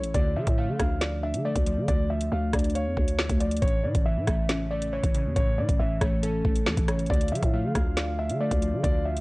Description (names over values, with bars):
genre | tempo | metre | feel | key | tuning
hip hop, drill | 138 BPM | 4/4 | half-time | D harmonic minor | A4 = 440 Hz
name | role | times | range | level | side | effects
dark grand piano | melody | 0.0-9.2 s | A4 to F5 | -31 LUFS | equal | none
glass harmonica | sustained chords | 0.0-0.1, 7.1-9.2 s | A3 to F5 | -38 LUFS | equal | none
growling 808-style bass | bass | 0.0-9.2 s | A1 to D3 | -29 LUFS | equal | none
drill drum kit | drums | 0.0-9.2 s | hi-hat, kick drum, rim click, snare drum | -26 LUFS | equal | none
glassy digital keys | accompaniment | 0.1-9.2 s | A2 to F5 | -32 LUFS | equal | chorus
room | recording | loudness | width
little or no reverb | dry, gritty hardware recording, cassette tape | -23 LUFS | side -23 dB against mid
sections
0.1-9.2 A section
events
none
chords
0.1 Dm; 3.6 A; 7.1 Dm